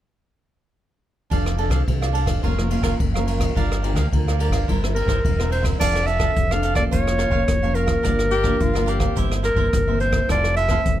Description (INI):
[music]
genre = samba and choro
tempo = 107 BPM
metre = 4/4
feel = straight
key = F major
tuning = A4 = 438 Hz
[part]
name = cavaquinho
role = accompaniment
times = 1.3-10.8 s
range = D4 to F5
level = -29 LUFS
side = right 6 dB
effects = none
[part]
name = nylon-string guitar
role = accompaniment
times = 1.3-11.0 s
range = F2 to Bb4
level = -28 LUFS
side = left 1 dB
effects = none
[part]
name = deep dub fingered electric bass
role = bass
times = 1.3-11.0 s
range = E1 to D2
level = -23 LUFS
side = equal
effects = none
[part]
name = jazz brush drum kit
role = drums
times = 1.3-11.0 s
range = crash cymbal, hi-hat, kick drum, ride cymbal, rim click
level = -24 LUFS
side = equal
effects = none
[part]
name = clear clarinet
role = melody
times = 4.9-11.0 s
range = Bb4 to F5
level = -22 LUFS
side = equal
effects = none
[part]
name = breathy tenor saxophone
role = second line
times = 8.3-9.3 s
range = F4 to G4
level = -26 LUFS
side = left 8 dB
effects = none
[sound]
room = little or no reverb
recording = close, detailed microphones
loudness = -18 LUFS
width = side -12 dB against mid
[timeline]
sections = 1.3-5.8 A section; 5.8-11.0 B section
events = none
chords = 1.3 F6; 2.4 Bbm/F; 3.6 Gm7; 4.7 C7/G; 5.8 F6; 6.9 Bbm/F; 8.1 Gm7; 9.2 C7/G; 10.3 Fmaj7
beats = | 1.31 1.87 2.43 3.00 | 3.56 4.12 4.68 5.24 | 5.80 6.37 6.93 7.49 | 8.05 8.61 9.17 9.74 | 10.30 10.86